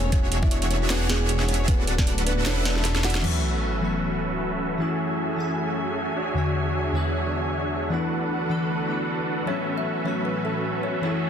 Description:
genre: future bass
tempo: 154 BPM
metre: 4/4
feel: swing 56% on 16ths, half-time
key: A major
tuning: A4 = 440 Hz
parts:
  - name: kalimba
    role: melody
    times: 0.0-3.2, 9.5-11.3 s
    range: G#3 to F#5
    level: -32 LUFS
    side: equal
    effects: sidechain pumping, ping-pong delay
  - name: Celtic harp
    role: arpeggios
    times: 0.0-4.9 s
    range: F#4 to D6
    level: -36 LUFS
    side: left 6 dB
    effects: sidechain pumping, ping-pong delay
  - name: wide detuned saw bass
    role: bass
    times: 0.0-3.2 s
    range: D1 to E1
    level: -25 LUFS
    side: equal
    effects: chorus, sidechain pumping
  - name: supersaw chords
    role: riff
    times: 0.1-11.3 s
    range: C#4 to F#5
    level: -27 LUFS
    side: right 2 dB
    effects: sidechain pumping, low-pass filter, ping-pong delay
  - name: electronic kick drum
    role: drums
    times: 0.1-2.1 s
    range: none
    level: -22 LUFS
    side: equal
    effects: small room ambience
  - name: trap drum kit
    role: drums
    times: 0.1-3.3 s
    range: crash cymbal, hi-hat, snare drum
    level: -28 LUFS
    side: right 1 dB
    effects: small room ambience
  - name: glassy digital keys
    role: accompaniment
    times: 3.2-11.3 s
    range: E2 to G#5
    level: -27 LUFS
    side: left 2 dB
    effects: chorus, sidechain pumping, ping-pong delay
  - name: dark studio string section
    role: sustained chords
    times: 3.2-11.3 s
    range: D2 to G#5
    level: -35 LUFS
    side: equal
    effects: sidechain pumping
  - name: sub drop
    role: sound effects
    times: 3.2-4.8 s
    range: none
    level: -29 LUFS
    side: equal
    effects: none
room: light reverb, digital ambience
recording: dense, heavily limited modern master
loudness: -22 LUFS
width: side -8 dB against mid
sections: 0.0-3.2 A section; 3.2-11.3 B section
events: drop 0.0-3.2; kick drops out 2.5-3.2; drum fill 2.9-3.2; impact 3.2-4.8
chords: 0.0 E13; 1.7 D6; 2.5 E7sus4; 3.2 A69; 4.8 F#m9; 6.2 E13; 7.9 D6; 9.5 A69

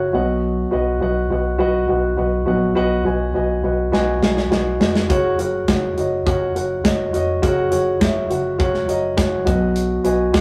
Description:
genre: piano-driven pop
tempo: 103 BPM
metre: 4/4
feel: straight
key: unclear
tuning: A4 = 438 Hz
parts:
  - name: warm concert grand piano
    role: accompaniment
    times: 0.0-10.4 s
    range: B2 to A#5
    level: -21 LUFS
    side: equal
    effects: none
  - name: vintage muted fingered electric bass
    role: bass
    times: 0.0-10.4 s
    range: E#1 to B1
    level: -27 LUFS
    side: equal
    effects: none
  - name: modern studio drum kit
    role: drums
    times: 3.9-10.4 s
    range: hi-hat, kick drum, snare drum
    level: -22 LUFS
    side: equal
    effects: none
room: moderate small room reverb, RT60 0.5 s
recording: rough rehearsal-room recording, small room ambience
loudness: -19 LUFS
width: mono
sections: 0.0-10.4 A section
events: drum fill 3.9-5.1; grand piano fill 8.6-9.8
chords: 0.1 B; 5.1 F#; 9.5 B

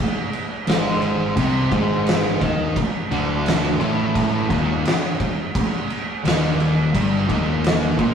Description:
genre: stoner and doom metal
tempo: 86 BPM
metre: 4/4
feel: straight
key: unclear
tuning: A4 = 438 Hz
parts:
  - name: oversized low-tuned drum kit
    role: drums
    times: 0.3-8.1 s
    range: crash cymbal, kick drum, snare drum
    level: -21 LUFS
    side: right 1 dB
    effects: none
  - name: fuzz guitar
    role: riff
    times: 0.7-8.1 s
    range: D2 to Eb4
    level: -20 LUFS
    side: equal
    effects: distortion
  - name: fuzz fingered electric bass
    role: bass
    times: 0.7-8.1 s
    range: D1 to Eb2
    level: -28 LUFS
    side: equal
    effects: overdrive
room: moderate studio reverb, RT60 0.5 s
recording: rough rehearsal-room recording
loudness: -18 LUFS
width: side -7 dB against mid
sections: 0.0-8.1 A section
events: none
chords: 0.0 N.C.; 2.8 D5

